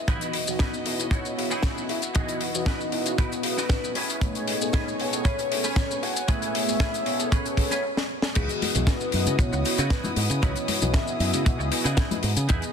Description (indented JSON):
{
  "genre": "nu-disco, nu disco",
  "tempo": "116 BPM",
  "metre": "4/4",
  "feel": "straight",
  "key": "C# minor",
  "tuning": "A4 = 440 Hz",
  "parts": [
    { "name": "soft octave-layered synth lead", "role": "melody", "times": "0.0-12.2 s", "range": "G#4 to F#5", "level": "-32 LUFS", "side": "left 2 dB", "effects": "chorus, phaser, ping-pong delay" },
    { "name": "muted symphonic violin section", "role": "sustained chords", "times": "0.0-12.7 s", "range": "G#3 to D#6", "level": "-36 LUFS", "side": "left 1 dB", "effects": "sidechain pumping, low-pass filter" },
    { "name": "mellow synth brass", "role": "accompaniment", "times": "0.1-12.7 s", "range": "E3 to D#5", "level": "-31 LUFS", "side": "equal", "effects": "chorus, sidechain pumping" },
    { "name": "clean electric guitar", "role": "riff", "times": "0.1-12.6 s", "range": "C#4 to C#5", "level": "-34 LUFS", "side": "right 2 dB", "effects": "ensemble chorus, tape echo" },
    { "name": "picked electric bass with an envelope filter", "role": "bass", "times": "0.1-12.6 s", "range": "E1 to C#3", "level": "-29 LUFS", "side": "equal", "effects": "high-pass filter" },
    { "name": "kick drum", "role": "drums", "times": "0.1-12.6 s", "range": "none", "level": "-24 LUFS", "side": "equal", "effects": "none" },
    { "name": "tight funk drum kit", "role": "drums", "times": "0.1-12.7 s", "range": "crash cymbal, hi-hat, shaker, snare drum", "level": "-29 LUFS", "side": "left 3 dB", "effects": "none" },
    { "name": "maracas and congas", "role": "percussion", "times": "8.4-12.6 s", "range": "none", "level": "-34 LUFS", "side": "left 5 dB", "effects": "none" }
  ],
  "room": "light reverb, small room ambience",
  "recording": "dense, heavily limited modern master",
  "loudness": "-22 LUFS",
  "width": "side -7 dB against mid",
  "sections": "0.0-8.4 A section; 8.4-12.7 B section",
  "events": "build-up 0.0-8.4; filter sweep on analog polysynth 0.0-8.4; filter sweep on soft synth lead 0.0-8.4; stop 7.8-8.4; drum fill 8.0-8.4; drop 8.4-12.7",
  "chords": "0.1 C#m11; 4.0 Amaj9; 8.4 C#m11"
}